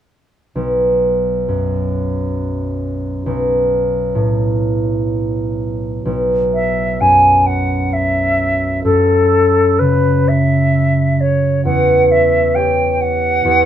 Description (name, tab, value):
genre	classical, impressionist duo for flute and harp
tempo	65 BPM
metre	3/4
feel	uneven beats, rubato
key	unclear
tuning	A4 = 440 Hz
part	concert harp	accompaniment	0.6-13.7 s	B1 to C#5	-15 LUFS	right 1 dB	none
part	silver concert flute	melody	6.5-13.7 s	A4 to G#5	-14 LUFS	left 1 dB	none
room	light reverb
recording	minimal, uncompressed stereo recording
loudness	-13 LUFS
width	side -10 dB against mid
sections	0.6-6.0 A section; 6.0-13.7 B section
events	none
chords	0.6 B5; 3.3 Asus2/B; 6.0 Bsus4; 8.8 F#m7; 11.6 Em6